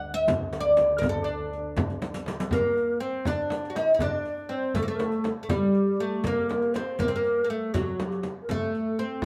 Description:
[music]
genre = Persian modal ensemble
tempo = 80 BPM (dotted quarters)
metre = 6/8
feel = straight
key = D dastgah homayun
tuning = A4 = 442 Hz
[part]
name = oud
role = melody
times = 0.0-9.2 s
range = F#3 to F#5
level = -29 LUFS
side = equal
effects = none
[part]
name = warm double bass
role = drone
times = 0.0-2.6 s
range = D2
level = -42 LUFS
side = equal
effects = none
[part]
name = frame drum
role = percussion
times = 0.3-9.2 s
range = none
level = -35 LUFS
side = equal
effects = none
[part]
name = riq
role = percussion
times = 0.3-8.8 s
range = none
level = -40 LUFS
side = equal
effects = none
[part]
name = tombak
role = percussion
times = 0.3-8.8 s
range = none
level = -37 LUFS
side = equal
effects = none
[part]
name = breathy low ney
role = second line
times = 2.5-9.0 s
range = F#4 to Eb5+42c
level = -31 LUFS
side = equal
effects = none
[sound]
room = moderate large studio reverb, RT60 0.9 s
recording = band playing live in one room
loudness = -27 LUFS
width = mono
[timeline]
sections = 0.0-2.5 A section; 2.5-9.2 B section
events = drum fill 2.0-2.5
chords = none

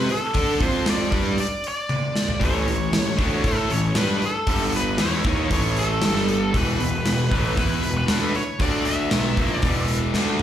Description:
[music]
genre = hard rock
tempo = 116 BPM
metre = 4/4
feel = straight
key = A major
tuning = A4 = 440 Hz
[part]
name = nasal lead guitar with a parked wah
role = melody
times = 0.0-9.9 s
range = A4 to E5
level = -27 LUFS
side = left 1 dB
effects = overdrive, slapback echo
[part]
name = sludgy distorted guitar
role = riff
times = 0.0-10.4 s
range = E2 to D5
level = -27 LUFS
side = right 7 dB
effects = overdrive, slapback echo
[part]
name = tight distorted guitar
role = riff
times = 0.0-10.4 s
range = E2 to D5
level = -29 LUFS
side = left 10 dB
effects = distortion, slapback echo
[part]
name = fuzz picked electric bass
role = bass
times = 0.0-10.4 s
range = E1 to D3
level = -26 LUFS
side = left 1 dB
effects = overdrive
[part]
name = gated 80s drum kit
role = drums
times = 0.1-10.4 s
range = hi-hat, kick drum, snare drum, toms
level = -24 LUFS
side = equal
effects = none
[sound]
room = light reverb, small room ambience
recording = live gig heard through the venue's PA, club reverb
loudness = -19 LUFS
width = side -10 dB against mid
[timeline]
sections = 0.0-10.4 A section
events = drum fill 1.9-2.4, 10.2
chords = 0.0 D5; 0.6 F5; 1.1 Dsus4; 2.4 A; 4.5 G5; 5.0 A; 6.0 G5; 6.5 E5; 8.6 D5; 9.1 E5

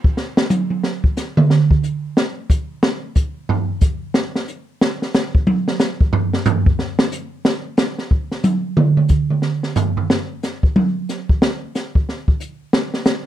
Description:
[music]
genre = jazz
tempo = 182 BPM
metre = 4/4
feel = swing 62% on 8ths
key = none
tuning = none
[part]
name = open jazz drum kit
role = drums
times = 0.0-13.2 s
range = hi-hat, kick drum, snare drum, toms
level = -16 LUFS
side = right 1 dB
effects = none
[sound]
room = light reverb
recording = dark, warm production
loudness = -16 LUFS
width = side -12 dB against mid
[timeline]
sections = 0.0-10.1 A section; 10.1-13.3 A section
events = drum solo 0.0-13.3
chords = none

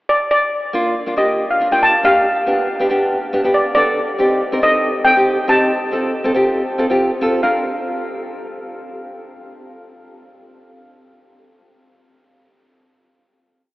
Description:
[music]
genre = calypso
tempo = 139 BPM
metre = 4/4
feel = swing 53% on 16ths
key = Bb major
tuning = A4 = 440 Hz
[part]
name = steel pan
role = melody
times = 0.1-7.6 s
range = D5 to A5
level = -17 LUFS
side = equal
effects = none
[part]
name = nylon-string guitar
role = accompaniment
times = 0.7-7.6 s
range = Bb3 to Bb4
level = -18 LUFS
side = equal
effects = none
[sound]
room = wet cathedral reverb, RT60 6.9 s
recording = recorded in a church or concert hall, telephone sound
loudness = -14 LUFS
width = side -18 dB against mid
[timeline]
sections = 0.0-0.5 pickup bar; 0.5-7.4 verse; 7.4-9.2 final chord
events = none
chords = 0.0 N.C.; 0.5 Bb; 2.3 G; 4.0 Cm; 5.7 F/C; 7.4 Bb

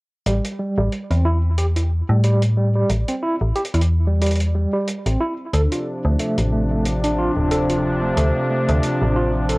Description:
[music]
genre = IDM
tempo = 91 BPM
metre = 4/4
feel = swing 56% on 16ths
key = A minor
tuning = A4 = 440 Hz
[part]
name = tine electric piano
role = arpeggios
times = 0.3-9.6 s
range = G3 to A4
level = -24 LUFS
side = right 1 dB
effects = medium tremolo, vintage 12-bit sampler grit, low-pass filter, cassette tape, tape echo
[part]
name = metallic FM bass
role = bass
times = 0.3-9.6 s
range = D1 to A2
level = -19 LUFS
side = equal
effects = none
[part]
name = electronic hi-hat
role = drums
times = 0.3-9.6 s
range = none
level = -31 LUFS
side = equal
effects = cassette tape
[part]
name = warm analog pad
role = sustained chords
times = 5.5-9.6 s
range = C3 to D4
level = -20 LUFS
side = equal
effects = chorus, cassette tape
[sound]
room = light reverb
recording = home recording on cassette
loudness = -17 LUFS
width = side -24 dB against mid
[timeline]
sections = 0.3-9.6 A section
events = filter sweep on FM bass 0.3-9.6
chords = 0.3 A7(no3); 5.5 Dm7

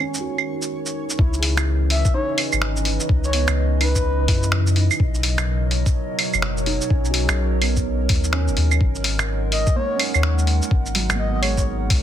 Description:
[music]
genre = future garage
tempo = 126 BPM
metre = 4/4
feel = swing 62% on 16ths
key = C# dorian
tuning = A4 = 440 Hz
[part]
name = felt-muted upright piano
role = accompaniment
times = 0.0-12.0 s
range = F#3 to G#4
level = -30 LUFS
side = right 5 dB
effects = sidechain pumping, digital delay
[part]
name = warbly tape-like pad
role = sustained chords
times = 0.0-12.0 s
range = B2 to F#5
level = -28 LUFS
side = right 2 dB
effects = chorus, built-in reverb, sidechain pumping
[part]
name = lo-fi sampler-style drum kit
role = drums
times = 0.0-12.0 s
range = claves, finger snaps, hi-hat, shaker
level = -23 LUFS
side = right 1 dB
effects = soft clipping on snare
[part]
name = backwards swelling texture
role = texture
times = 0.0-1.2 s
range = C#5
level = -43 LUFS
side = right 1 dB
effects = built-in reverb
[part]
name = soft dub sub bass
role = bass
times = 1.2-12.0 s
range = F#1 to F#2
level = -21 LUFS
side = left 1 dB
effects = sidechain pumping
[part]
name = electronic kick drum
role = drums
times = 1.2-12.0 s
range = none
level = -20 LUFS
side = left 1 dB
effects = none
[part]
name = breathy flute-like synth lead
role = melody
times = 1.9-4.5, 9.5-11.6 s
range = B4 to E5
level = -27 LUFS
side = left 1 dB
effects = chorus, digital delay
[sound]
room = light reverb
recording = dense, heavily limited modern master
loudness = -18 LUFS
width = side -10 dB against mid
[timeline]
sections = 0.0-1.2 A section; 1.2-12.0 B section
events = none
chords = 0.0 D#m7; 1.2 C#m7; 5.0 Bmaj7; 8.8 G#m7

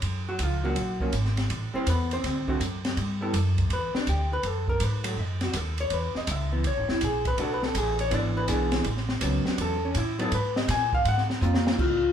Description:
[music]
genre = jazz, small-group swing and bop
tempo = 163 BPM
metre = 4/4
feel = swing 66% on 8ths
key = unclear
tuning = A4 = 443 Hz
[part]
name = upright bass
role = bass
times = 0.0-12.1 s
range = E1 to A#2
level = -28 LUFS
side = equal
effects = none
[part]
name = open jazz drum kit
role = drums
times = 0.0-11.9 s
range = crash cymbal, hi-hat, kick drum, ride cymbal, snare drum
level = -31 LUFS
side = equal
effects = none
[part]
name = vintage hollow-body jazz guitar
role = accompaniment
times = 0.3-11.8 s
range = D3 to G#5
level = -28 LUFS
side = equal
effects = none
[part]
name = vibraphone with soft mallets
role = melody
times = 11.4-12.1 s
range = A#3 to F4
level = -25 LUFS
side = left 3 dB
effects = none
[sound]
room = moderate large studio reverb, RT60 1.0 s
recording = band playing live in one room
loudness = -24 LUFS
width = side -9 dB against mid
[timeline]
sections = 0.0-11.8 A section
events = drum fill 11.4-11.8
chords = 0.0 F#maj7; 1.5 Am7; 2.2 D7; 3.0 G6; 4.4 F#m; 5.2 D#m7b5; 5.9 E6; 7.4 Bm7; 8.1 E7; 8.9 A69; 10.3 G#m69; 11.1 G#69

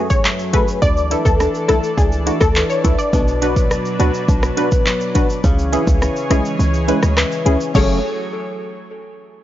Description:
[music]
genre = dancehall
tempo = 104 BPM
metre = 4/4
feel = straight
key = F# minor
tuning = A4 = 439 Hz
[part]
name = wavetable chord stab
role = accompaniment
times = 0.0-8.0 s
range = A3 to B4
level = -22 LUFS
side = right 1 dB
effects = none
[part]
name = lush unison pad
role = sustained chords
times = 0.0-8.0 s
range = E3 to D5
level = -26 LUFS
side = equal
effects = chorus, sidechain pumping
[part]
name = flamenco guitar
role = arpeggios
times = 0.0-8.0 s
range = F#2 to G#4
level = -22 LUFS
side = left 2 dB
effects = none
[part]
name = analog pluck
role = melody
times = 0.1-3.1, 7.8-8.0 s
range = G#4 to D5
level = -21 LUFS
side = left 2 dB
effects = chorus, analog delay
[part]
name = afro-pop drum kit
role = drums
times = 0.1-7.9 s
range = crash cymbal, handclaps, hi-hat, kick drum, rim click, shaker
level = -18 LUFS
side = equal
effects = none
[part]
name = tube shaker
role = percussion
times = 0.1-8.0 s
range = none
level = -38 LUFS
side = right 1 dB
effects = none
[part]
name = short 808-style bass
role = bass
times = 0.8-8.0 s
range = F#1 to D2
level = -18 LUFS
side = equal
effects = none
[part]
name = synth chime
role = second line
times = 7.8-8.0 s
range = A4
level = -27 LUFS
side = equal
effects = ensemble chorus, analog delay
[sound]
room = digital ambience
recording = dry, gritty hardware recording, nothing above 7.5 kHz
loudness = -14 LUFS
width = side -13 dB against mid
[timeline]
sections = 0.0-7.7 A section; 7.7-9.4 B section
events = kick muted 6.6-7.7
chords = 0.0 F#madd9; 0.8 Dsus2; 3.1 Bm; 5.4 C#m; 7.7 F#madd9

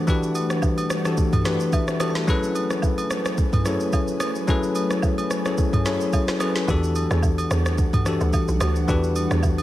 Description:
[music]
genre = amapiano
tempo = 109 BPM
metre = 4/4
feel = swing 55% on 16ths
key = E dorian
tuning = A4 = 440 Hz
[part]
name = bell-like tine electric piano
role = accompaniment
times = 0.0-9.6 s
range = E3 to A5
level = -23 LUFS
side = left 2 dB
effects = none
[part]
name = ethereal airy pad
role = sustained chords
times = 0.0-9.6 s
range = E3 to G#5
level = -32 LUFS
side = right 2 dB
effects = ensemble chorus, built-in reverb, sidechain pumping
[part]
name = smooth R&B drum kit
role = drums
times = 0.1-9.6 s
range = kick drum, rim click, shaker, snare drum, toms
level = -24 LUFS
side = right 1 dB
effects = none
[part]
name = agogo bells and woodblock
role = percussion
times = 0.4-9.6 s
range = none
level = -33 LUFS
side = right 4 dB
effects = none
[part]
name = hollow log drum bass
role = bass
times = 6.7-9.6 s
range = B1 to E2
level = -23 LUFS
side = equal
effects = none
[sound]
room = little or no reverb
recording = none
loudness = -20 LUFS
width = side -14 dB against mid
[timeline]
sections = 0.0-9.6 A section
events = tine electric piano fill 1.5-2.3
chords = 0.0 Em11; 2.3 F#m11; 6.7 Em11

